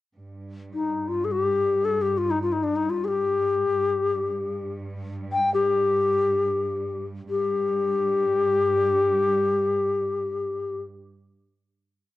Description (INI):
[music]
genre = Persian modal ensemble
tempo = free time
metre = none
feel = none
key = unclear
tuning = A4 = 443 Hz
[part]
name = rich studio cello section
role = drone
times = 0.2-10.8 s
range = G2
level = -34 LUFS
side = right 2 dB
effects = cassette tape
[part]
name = breathy bright low ney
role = melody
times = 0.7-10.8 s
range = D4 to G5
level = -22 LUFS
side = left 3 dB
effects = cassette tape
[sound]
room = light reverb, small room ambience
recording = home recording on cassette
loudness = -22 LUFS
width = side -15 dB against mid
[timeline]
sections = 0.2-7.3 free-time section; 7.3-10.8 final note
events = none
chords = none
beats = free time